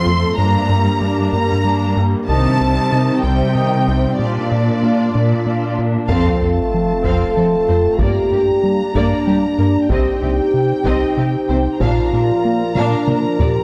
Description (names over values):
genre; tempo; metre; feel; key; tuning
cinematic, hybrid orchestral and electronic film score; 63 BPM (dotted quarters); 6/8; straight; C dorian; A4 = 438 Hz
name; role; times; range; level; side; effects
warm symphonic violin section; melody; 0.0-13.6 s; D5 to C6; -27 LUFS; equal; none
dark studio viola section; accompaniment; 0.0-13.5 s; Eb3 to A4; -26 LUFS; equal; none
warbly tape-like pad; sustained chords; 0.0-13.6 s; F3 to F5; -25 LUFS; equal; chorus, built-in reverb
warm symphonic cello section; bass; 0.0-13.5 s; F2 to C3; -23 LUFS; equal; none
round analog bass; riff; 0.1-13.6 s; C2 to Bb3; -22 LUFS; equal; none
rich symphonic violin section; second line; 6.1-13.5 s; G4 to F5; -31 LUFS; equal; none
dark French horn section; sustained chords; 6.1-13.6 s; D4 to A4; -20 LUFS; equal; none
taiko ensemble; drums; 6.1-13.6 s; none; -24 LUFS; equal; none
sub drop; sound effects; 6.1-8.0 s; none; -28 LUFS; equal; none
room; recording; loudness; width
moderate scoring stage reverb, RT60 1.9 s; none; -16 LUFS; mono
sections
0.0-6.1 A section; 6.1-13.6 A section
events
band accent 6.1-6.7; impact 6.1-8.0; drum fill 12.8-13.6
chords
0.4 Gm; 2.3 Cm; 4.2 Bb; 6.1 F; 8.0 Gm; 9.9 Cm; 11.8 Bb